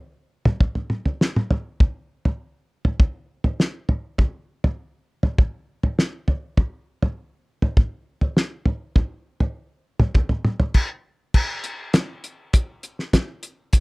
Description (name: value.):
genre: rock.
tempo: 101 BPM.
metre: 4/4.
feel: straight.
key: none.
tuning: none.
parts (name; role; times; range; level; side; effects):
cloth-damped thuddy drum kit; drums; 0.5-13.8 s; crash cymbal, hi-hat, kick drum, snare drum, toms; -18 LUFS; equal; none.
room: little or no reverb.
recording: dry, close 1970s-style studio recording.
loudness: -21 LUFS.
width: side -27 dB against mid.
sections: 0.0-11.3 A section; 11.3-13.8 B section.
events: none.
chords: none.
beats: 0.01 0.61 1.20 | 1.80 2.40 3.00 3.59 | 4.19 4.79 5.38 5.98 | 6.58 7.17 7.77 8.37 | 8.96 9.56 10.15 10.75 | 11.35 11.94 12.54 13.13 | 13.73.